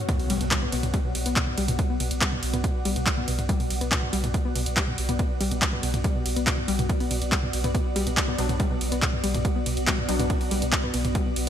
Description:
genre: driving peak-time techno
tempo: 141 BPM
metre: 4/4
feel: straight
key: B minor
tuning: A4 = 441 Hz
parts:
  - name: granular cloud pad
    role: texture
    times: 0.0-11.5 s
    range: B3 to F#5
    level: -32 LUFS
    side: equal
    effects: built-in reverb, sidechain pumping
  - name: warbly dusty pluck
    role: riff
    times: 0.1-11.3 s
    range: B2 to B3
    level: -30 LUFS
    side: left 2 dB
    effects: chorus, tube saturation, cassette tape, sidechain pumping, digital delay
  - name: electronic kick drum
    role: drums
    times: 0.1-11.2 s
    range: none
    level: -27 LUFS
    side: equal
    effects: overdrive
  - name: punchy analog drum machine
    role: drums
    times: 0.1-11.4 s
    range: handclaps, hi-hat, ride cymbal, toms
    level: -28 LUFS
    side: right 1 dB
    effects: overdrive
  - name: impact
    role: sound effects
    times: 0.1-1.8 s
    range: none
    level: -36 LUFS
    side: equal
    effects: none
  - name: warm sub bass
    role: bass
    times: 0.3-11.5 s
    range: B1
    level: -31 LUFS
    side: equal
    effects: overdrive, sidechain pumping, low-pass filter
  - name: rave stab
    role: stabs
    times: 8.4-10.3 s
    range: F#3 to D4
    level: -32 LUFS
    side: left 2 dB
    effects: chorus, built-in reverb, sidechain pumping, digital delay
room: light reverb, digital ambience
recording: bright 1980s-style digital production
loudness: -22 LUFS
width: side -9 dB against mid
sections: 0.1-11.5 A section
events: drop 0.1-11.5; impact 0.1-1.8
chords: 0.1 Bm

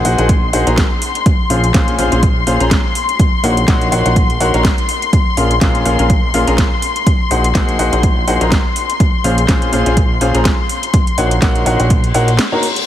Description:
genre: piano house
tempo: 124 BPM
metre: 4/4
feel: swing 56% on 16ths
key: unclear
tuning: A4 = 440 Hz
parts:
  - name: dark studio string section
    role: sustained chords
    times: 0.0-12.9 s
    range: C6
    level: -20 LUFS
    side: left 6 dB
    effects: sidechain pumping
  - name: clear grand piano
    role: riff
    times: 0.0-12.6 s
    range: Bb2 to Bb5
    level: -17 LUFS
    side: left 1 dB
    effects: sidechain pumping, dub echo
  - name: fat analog bass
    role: bass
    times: 0.0-12.4 s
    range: Bb1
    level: -17 LUFS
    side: right 1 dB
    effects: tube saturation, sidechain pumping
  - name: garage drum kit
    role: drums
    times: 0.0-12.8 s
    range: hi-hat, snare drum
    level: -20 LUFS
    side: right 1 dB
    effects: small room ambience
  - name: electronic kick drum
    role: drums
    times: 0.3-12.0 s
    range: none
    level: -14 LUFS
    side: right 1 dB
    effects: overdrive, small room ambience
  - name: reverse cymbal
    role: sound effects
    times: 12.1-12.9 s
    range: none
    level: -21 LUFS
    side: left 5 dB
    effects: none
room: light reverb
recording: heavily compressed radio sound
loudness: -11 LUFS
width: side -11 dB against mid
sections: 0.0-12.9 A section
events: reverse cymbal 12.1-12.9; break 12.4-12.9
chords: 0.0 Ab7/Bb; 1.3 Dbmaj7/Bb; 3.2 Ebm7/Bb; 5.1 Bbm7; 6.8 Ab7/Bb; 9.0 Dbmaj7/Bb; 10.9 Ebm7/Bb

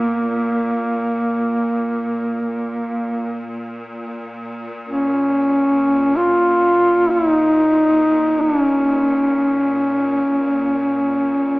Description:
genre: caucasian folk, Caucasian lament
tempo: free time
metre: none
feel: none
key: Bb minor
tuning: A4 = 440 Hz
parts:
  - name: mellow duduk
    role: melody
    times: 0.0-11.6 s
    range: Bb3 to F4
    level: -16 LUFS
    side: equal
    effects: none
  - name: bright studio string section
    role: drone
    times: 0.0-11.6 s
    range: Bb2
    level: -28 LUFS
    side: equal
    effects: none
room: moderate cathedral reverb, RT60 5.0 s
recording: small speaker sound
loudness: -15 LUFS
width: side -23 dB against mid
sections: 0.0-11.6 A section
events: none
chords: none

